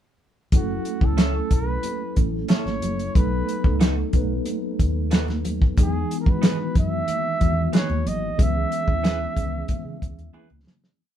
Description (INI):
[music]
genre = lush 1970s-style soul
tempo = 92 BPM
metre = 4/4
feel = straight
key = F# dorian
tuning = A4 = 441 Hz
[part]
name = mellow tine electric piano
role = accompaniment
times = 0.5-11.0 s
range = D#3 to B4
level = -28 LUFS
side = equal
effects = medium stereo tremolo
[part]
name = vintage muted fingered electric bass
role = bass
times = 0.5-10.9 s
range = F#1 to C#3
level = -27 LUFS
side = left 1 dB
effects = none
[part]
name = warm soul drum kit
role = drums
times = 0.5-11.0 s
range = hi-hat, kick drum, snare drum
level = -20 LUFS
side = equal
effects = none
[part]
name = congas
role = percussion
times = 0.5-10.8 s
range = none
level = -33 LUFS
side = equal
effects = none
[part]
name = breathy flugelhorn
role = melody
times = 0.6-10.4 s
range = F#4 to E5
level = -29 LUFS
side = right 3 dB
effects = none
[part]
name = electric guitar through a small old amp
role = riff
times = 1.2-10.5 s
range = A3 to C#5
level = -31 LUFS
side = right 5 dB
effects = none
[sound]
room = light reverb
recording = band playing live in one room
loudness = -20 LUFS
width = side -10 dB against mid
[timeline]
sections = 0.5-11.0 verse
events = fade-out 8.4-11.0; drum fill 10.3-11.0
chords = 0.5 F#m7; 3.1 B7; 5.8 Emaj7; 8.4 C#m7